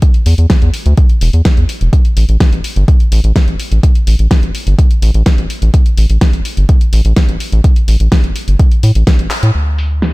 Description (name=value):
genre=progressive house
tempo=126 BPM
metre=4/4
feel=straight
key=unclear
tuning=A4 = 441 Hz
part: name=deep house drum kit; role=drums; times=0.0-10.1 s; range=handclaps, hi-hat, snare drum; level=-18 LUFS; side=equal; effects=low-pass filter on hats, low-pass filter on snare, low-pass filter on room
part: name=electronic kick drum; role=drums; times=0.0-9.2 s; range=none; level=-10 LUFS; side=equal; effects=overdrive
part: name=round analog bass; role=bass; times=0.3-10.1 s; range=E1 to A2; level=-10 LUFS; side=equal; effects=sidechain pumping
room=little or no reverb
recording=dark, warm production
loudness=-9 LUFS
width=side -22 dB against mid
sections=0.0-9.5 A section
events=drum fill 9.3; band accent 9.3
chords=none